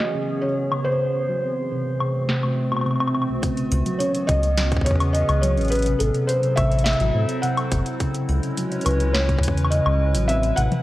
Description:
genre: IDM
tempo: 105 BPM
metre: 4/4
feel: straight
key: C# minor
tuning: A4 = 435 Hz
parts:
  - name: felt-muted upright piano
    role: melody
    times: 0.0-10.8 s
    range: A4 to F#5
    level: -25 LUFS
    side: equal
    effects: ping-pong delay
  - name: warbly tape-like pad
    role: sustained chords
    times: 0.0-10.8 s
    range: E3 to C#5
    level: -29 LUFS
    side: left 1 dB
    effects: chorus, built-in reverb
  - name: booming analog drum machine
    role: drums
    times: 0.0-10.8 s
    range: hi-hat, snare drum, toms, woodblock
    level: -28 LUFS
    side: left 1 dB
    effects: low-pass filter on perc, low-pass filter on snare, low-pass filter on hats, low-pass filter on toms
  - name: harp-like synth pluck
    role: arpeggios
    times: 0.1-10.7 s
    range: C2 to C#4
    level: -25 LUFS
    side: right 1 dB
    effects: chorus, cassette tape, ping-pong delay
  - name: electronic kick drum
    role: drums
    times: 3.4-9.6 s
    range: none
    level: -24 LUFS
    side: equal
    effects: none
  - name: round analog bass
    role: bass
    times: 3.7-10.7 s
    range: F#1 to A2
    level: -21 LUFS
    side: equal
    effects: none
room: moderate echo chamber reverb, RT60 1.9 s, digital ambience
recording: worn, warbling old tape, cassette tape, warbly pitch drift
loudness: -19 LUFS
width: side -16 dB against mid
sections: 0.0-3.4 A section; 3.4-10.8 B section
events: none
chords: 0.0 C#m7; 1.1 Am6; 3.4 C#m7; 5.7 Am6; 8.0 C#m7; 10.3 Am6

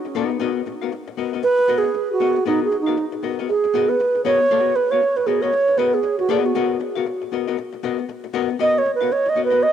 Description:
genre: funk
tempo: 117 BPM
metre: 4/4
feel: swing 60% on 16ths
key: G# dorian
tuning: A4 = 439 Hz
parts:
  - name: archtop guitar, miked and amplified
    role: accompaniment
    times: 0.0-9.6 s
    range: B3 to E#5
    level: -24 LUFS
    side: left 10 dB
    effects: cassette tape
  - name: bright reedy wooden-headed alto flute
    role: melody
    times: 1.4-9.7 s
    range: D#4 to D#5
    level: -18 LUFS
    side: right 3 dB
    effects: analog delay
room: moderate lush hall reverb, RT60 2.9 s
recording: home recording on cassette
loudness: -18 LUFS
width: side -9 dB against mid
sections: 0.0-9.7 A section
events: alto flute solo 0.0-9.7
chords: 0.0 G#m9 (rootless)

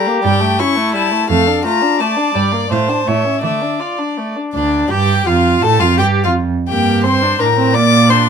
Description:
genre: quick classical-period movement for string quartet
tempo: 169 BPM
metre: 3/4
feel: straight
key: D minor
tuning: A4 = 441 Hz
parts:
  - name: warm violin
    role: melody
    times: 0.0-8.3 s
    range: D5 to D6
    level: -17 LUFS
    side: left 8 dB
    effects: none
  - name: dark violin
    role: second line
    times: 0.0-8.2 s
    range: G3 to D5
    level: -18 LUFS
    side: left 2 dB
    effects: none
  - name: warm viola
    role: accompaniment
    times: 0.0-8.3 s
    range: Bb3 to D5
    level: -18 LUFS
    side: right 3 dB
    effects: none
  - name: rich cello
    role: bass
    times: 0.2-8.3 s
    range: D2 to D3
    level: -16 LUFS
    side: right 4 dB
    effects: none
room: light reverb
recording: minimal, uncompressed stereo recording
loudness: -12 LUFS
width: side -7 dB against mid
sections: 0.0-4.5 A section; 4.5-8.3 A section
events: none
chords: 0.2 A7/G; 1.3 Dm/F; 2.4 Gm; 2.7 Dm/A; 3.1 A; 3.4 D5; 4.5 Dm; 5.6 Fadd9; 6.7 Gm; 7.7 Bbadd9

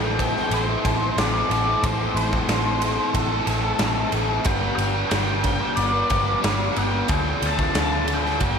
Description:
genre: rock, shoegaze and dream pop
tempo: 91 BPM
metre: 4/4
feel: straight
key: unclear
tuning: A4 = 444 Hz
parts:
  - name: octave-fuzz lead guitar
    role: melody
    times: 0.0-8.6 s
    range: A4 to A5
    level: -26 LUFS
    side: left 1 dB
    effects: distortion, ping-pong delay
  - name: biting overdriven guitar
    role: riff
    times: 0.0-8.6 s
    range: A2 to B4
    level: -24 LUFS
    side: left 1 dB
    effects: analog chorus
  - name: vintage muted picked electric bass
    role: bass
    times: 0.0-8.6 s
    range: G1 to D2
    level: -26 LUFS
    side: equal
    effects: none
  - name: big rock drum kit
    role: drums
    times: 0.2-8.6 s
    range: kick drum, ride cymbal, snare drum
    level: -25 LUFS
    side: right 1 dB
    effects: none
room: moderate lush hall reverb, RT60 1.7 s, small room ambience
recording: dreamy mix soaked in reverb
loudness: -19 LUFS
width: side -6 dB against mid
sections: 0.0-8.6 A section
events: none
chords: 0.0 Am; 4.5 G; 7.1 Dm

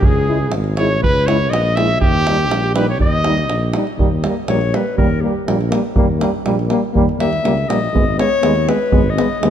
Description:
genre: balkan folk, Balkan brass band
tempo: 121 BPM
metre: 2/4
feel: straight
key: Eb phrygian dominant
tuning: A4 = 440 Hz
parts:
  - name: clear trumpet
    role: melody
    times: 0.0-3.7 s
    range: G4 to Fb5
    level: -20 LUFS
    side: right 1 dB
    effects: tape echo
  - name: clear clarinet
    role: second line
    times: 0.0-9.5 s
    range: G4 to Fb5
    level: -22 LUFS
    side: left 5 dB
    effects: tape echo
  - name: mellow tuba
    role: bass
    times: 0.0-9.5 s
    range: Ab1 to Eb2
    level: -20 LUFS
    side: equal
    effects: none
  - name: davul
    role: percussion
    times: 0.0-9.5 s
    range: none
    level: -20 LUFS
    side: right 1 dB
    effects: none
  - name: clear euphonium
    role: accompaniment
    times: 0.3-9.5 s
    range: G3 to Ab3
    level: -22 LUFS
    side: right 6 dB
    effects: none
  - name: warm French horn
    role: accompaniment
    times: 0.3-9.5 s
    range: Bb3 to Fb4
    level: -23 LUFS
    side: left 7 dB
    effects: none
room: light reverb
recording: none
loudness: -14 LUFS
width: side -9 dB against mid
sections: 0.0-4.0 A section; 4.0-9.5 B section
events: clarinet solo 4.0-9.5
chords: 0.0 Dbm; 2.0 Eb; 7.9 Abm

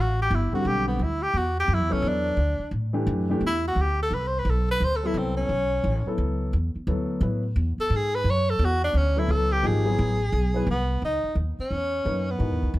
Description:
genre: modal jazz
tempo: 174 BPM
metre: 4/4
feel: swing 64% on 8ths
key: unclear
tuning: A4 = 440 Hz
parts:
  - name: breathy tenor saxophone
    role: melody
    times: 0.0-12.8 s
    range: B3 to C#5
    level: -26 LUFS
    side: equal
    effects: plate reverb
  - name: upright bass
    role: bass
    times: 0.0-12.8 s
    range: G1 to A2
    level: -25 LUFS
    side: equal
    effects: none
  - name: warm grand piano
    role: accompaniment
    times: 0.5-12.8 s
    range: D3 to B4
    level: -28 LUFS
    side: left 2 dB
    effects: none
room: moderate club reverb, RT60 0.6 s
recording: none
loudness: -22 LUFS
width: side -17 dB against mid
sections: 0.0-11.0 A section; 11.0-12.8 B section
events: tenor saxophone solo 0.0-11.0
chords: 0.0 Am11; 5.5 Bm11; 9.6 G#7alt; 11.0 C#m11

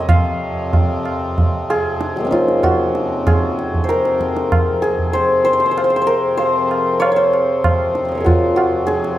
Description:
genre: indian classical, Hindustani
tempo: 95 BPM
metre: 4/4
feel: straight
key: F raga bhairavi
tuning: A4 = 440 Hz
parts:
  - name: santur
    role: melody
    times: 0.0-9.2 s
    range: Gb3 to F5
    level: -16 LUFS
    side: equal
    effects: none
  - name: hand-pumped harmonium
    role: drone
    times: 0.0-9.2 s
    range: F2 to C3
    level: -24 LUFS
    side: left 2 dB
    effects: none
  - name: tabla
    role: percussion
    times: 0.1-9.2 s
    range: none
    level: -19 LUFS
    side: right 1 dB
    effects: none
room: moderate recital hall reverb, RT60 1.6 s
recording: none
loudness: -14 LUFS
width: side -14 dB against mid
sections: 0.0-9.2 A section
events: speeding up 0.0-9.2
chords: none

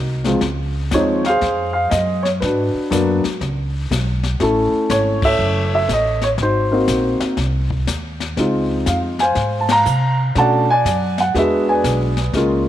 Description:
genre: jazz piano trio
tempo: 121 BPM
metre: 4/4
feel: swing 66% on 8ths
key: unclear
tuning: A4 = 440 Hz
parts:
  - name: dark upright piano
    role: melody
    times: 0.0-12.7 s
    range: Db2 to Bb5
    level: -17 LUFS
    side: equal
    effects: none
  - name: upright bass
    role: bass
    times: 0.0-12.7 s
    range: Gb1 to C3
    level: -21 LUFS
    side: equal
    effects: none
  - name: jazz brush drum kit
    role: drums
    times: 0.2-12.7 s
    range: brushed snare drum, crash cymbal, hi-hat, kick drum, ride cymbal, snare drum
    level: -26 LUFS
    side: left 4 dB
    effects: none
room: light reverb, small room ambience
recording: 1960s-style stereo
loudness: -15 LUFS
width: side -12 dB against mid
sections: 0.4-12.7 A section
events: band accent 5.1, 9.6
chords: 0.4 Dbmaj7; 2.4 Abm7b5; 3.4 Cbsus2; 4.4 Gbm7; 6.4 Ab7; 8.4 Dbmaj7; 10.3 Cbm7; 11.3 E9

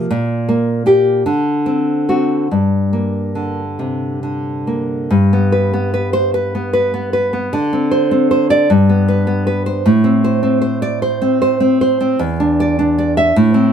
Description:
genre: romantic piece for solo classical guitar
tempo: 45-53 BPM (dotted quarters)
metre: 6/8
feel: rubato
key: G minor, G major from 5.1 s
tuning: A4 = 440 Hz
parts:
  - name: nylon-string guitar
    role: solo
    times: 0.0-13.7 s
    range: E2 to E5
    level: -13 LUFS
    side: equal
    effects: none
room: moderate studio reverb, RT60 0.7 s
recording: band playing live in one room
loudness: -13 LUFS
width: side -8 dB against mid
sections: 0.0-5.1 A section; 5.1-13.7 B section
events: none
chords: 0.1 Gm/Bb; 1.3 D7; 2.5 Gm; 5.1 G; 7.5 Csus2/D; 8.7 G; 9.9 Am; 12.2 Dsus2/E

